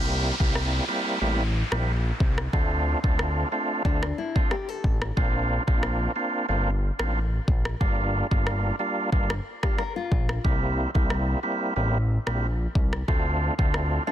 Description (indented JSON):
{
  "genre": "dancehall",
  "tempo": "91 BPM",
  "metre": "4/4",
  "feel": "straight",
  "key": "unclear",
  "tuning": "A4 = 439 Hz",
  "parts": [
    { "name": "percussive tonewheel organ", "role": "accompaniment", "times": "0.0-14.1 s", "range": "G3 to F4", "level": "-28 LUFS", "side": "right 2 dB", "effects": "overdrive, chorus vibrato, stopped rotary speaker" },
    { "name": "fat analog bass", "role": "bass", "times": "0.0-14.0 s", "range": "G1 to D2", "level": "-26 LUFS", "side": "equal", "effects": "none" },
    { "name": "downlifter", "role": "sound effects", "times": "0.0-5.2 s", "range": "none", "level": "-34 LUFS", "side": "equal", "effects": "none" },
    { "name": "afro-pop drum kit", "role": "drums", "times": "0.4-13.9 s", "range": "kick drum, rim click", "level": "-25 LUFS", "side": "equal", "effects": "soft clipping on snare" },
    { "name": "nylon-string guitar", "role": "arpeggios", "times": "3.9-5.1, 9.6-14.1 s", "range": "D4 to Bb4", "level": "-33 LUFS", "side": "left 6 dB", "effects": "none" }
  ],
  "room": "little or no reverb",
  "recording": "dense, heavily limited modern master",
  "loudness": "-23 LUFS",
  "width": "side -11 dB against mid",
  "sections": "0.0-14.1 A section",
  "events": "none",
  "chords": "0.0 C7; 2.5 Dm7; 5.2 Bbadd9; 7.8 Gm7; 10.4 C7; 13.1 Dm7"
}